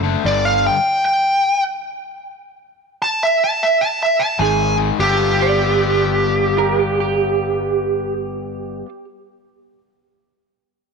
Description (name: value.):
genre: blues.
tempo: 101 BPM.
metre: 4/4.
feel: swing 64% on 8ths.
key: G mixolydian.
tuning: A4 = 440 Hz.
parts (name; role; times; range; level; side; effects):
crunchy overdriven guitar; riff; 0.0-0.8, 4.4-8.9 s; G2 to A4; -23 LUFS; left 12 dB; none.
fingered electric bass; bass; 0.0-0.7, 4.4-8.8 s; F#1 to Ab1; -23 LUFS; right 1 dB; none.
smooth overdriven lead guitar; melody; 0.3-8.1 s; G4 to A5; -17 LUFS; right 1 dB; none.
electric guitar through a small old amp; second line; 4.4-9.0 s; G4 to D5; -24 LUFS; right 10 dB; wide subtle chorus.
room: moderate echo chamber reverb, RT60 2.4 s.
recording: 1960s-style stereo with parts hard left and right.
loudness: -15 LUFS.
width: side -5 dB against mid.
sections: 0.0-5.0 A section; 5.0-7.4 B section.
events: none.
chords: 0.2 G5; 4.4 Ab5; 5.0 G9.